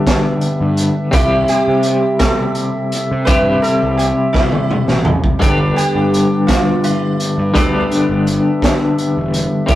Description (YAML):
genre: psychedelic rock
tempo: 56 BPM (dotted quarters)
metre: 6/8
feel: straight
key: G major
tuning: A4 = 444 Hz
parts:
  - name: sitar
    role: melody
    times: 0.0-9.8 s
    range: D4 to B4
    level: -22 LUFS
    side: right 4 dB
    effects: none
  - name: warm woodwind section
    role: sustained chords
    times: 0.0-9.8 s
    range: C4 to E5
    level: -27 LUFS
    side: right 2 dB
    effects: none
  - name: twelve-string electric guitar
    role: riff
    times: 0.0-9.8 s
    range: G2 to G4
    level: -16 LUFS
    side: left 2 dB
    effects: tremolo
  - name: raw garage drum kit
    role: drums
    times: 0.1-9.8 s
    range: hi-hat, kick drum, snare drum, toms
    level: -17 LUFS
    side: right 1 dB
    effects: none
  - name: fuzz picked electric bass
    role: bass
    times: 0.6-9.8 s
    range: E1 to C3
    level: -20 LUFS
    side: equal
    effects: overdrive
room: moderate studio reverb, RT60 0.6 s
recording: rough rehearsal-room recording, warm saturation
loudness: -12 LUFS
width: side -14 dB against mid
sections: 0.0-9.8 A section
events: drum fill 4.4-5.4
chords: 0.0 G; 1.1 C; 5.4 G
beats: 0.07 | 1.14 2.21 | 3.28 4.35 | 5.42 6.49 | 7.56 8.63 | 9.70